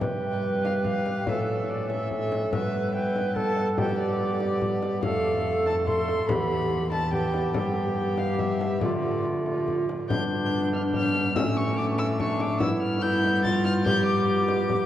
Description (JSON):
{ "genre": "classical, renaissance-style consort dance", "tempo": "143 BPM", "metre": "3/4", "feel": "straight", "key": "unclear", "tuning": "A4 = 440 Hz", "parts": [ { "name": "warm violin", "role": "melody", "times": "0.0-14.9 s", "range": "D5 to A6", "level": "-31 LUFS", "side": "left 2 dB", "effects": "none" }, { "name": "tenor recorder", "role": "second line", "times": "0.0-14.8 s", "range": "C#4 to B4", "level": "-28 LUFS", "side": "right 2 dB", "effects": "none" }, { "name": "mellow bassoon", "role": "accompaniment", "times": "0.0-14.9 s", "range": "A3 to G4", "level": "-32 LUFS", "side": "equal", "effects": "none" }, { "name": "rich cello", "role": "bass", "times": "0.0-14.9 s", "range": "E2 to D3", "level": "-30 LUFS", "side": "left 1 dB", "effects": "none" }, { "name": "frame drum", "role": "percussion", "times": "0.0-14.9 s", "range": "none", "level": "-32 LUFS", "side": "left 3 dB", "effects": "none" } ], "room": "wet cathedral reverb, RT60 4.6 s", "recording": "worn, warbling old tape, cassette tape, warbly pitch drift", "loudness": "-23 LUFS", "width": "side -12 dB against mid", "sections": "0.0-10.1 A section; 10.1-14.9 A section", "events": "none", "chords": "0.0 G; 1.3 A; 2.5 Em/G; 5.0 F; 6.3 Em; 7.5 G; 8.8 Dm; 10.1 G; 11.4 A; 12.6 Em/G" }